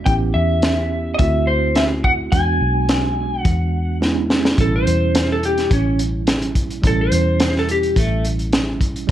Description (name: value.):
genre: straight-eighth soul blues.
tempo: 106 BPM.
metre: 4/4.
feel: straight.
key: A mixolydian.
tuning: A4 = 441 Hz.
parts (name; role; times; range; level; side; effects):
tine electric piano; accompaniment; 0.0-9.1 s; B2 to G4; -24 LUFS; right 5 dB; overdrive, medium stereo tremolo, plate reverb.
vintage muted fingered electric bass; bass; 0.0-9.1 s; A1 to E2; -21 LUFS; equal; none.
electric slide guitar; melody; 0.1-8.2 s; A3 to G#5; -21 LUFS; left 1 dB; plate reverb.
crunchy breakbeat drum kit; drums; 0.1-9.1 s; hi-hat, kick drum, snare drum; -19 LUFS; equal; none.
room: light reverb.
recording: none.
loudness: -15 LUFS.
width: side -12 dB against mid.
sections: 0.0-4.6 A section; 4.6-9.1 B section.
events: drum fill 4.0-4.6; electric slide guitar solo 4.6-9.1.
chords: 0.1 A9; 1.2 D9; 2.3 E9; 4.6 A9.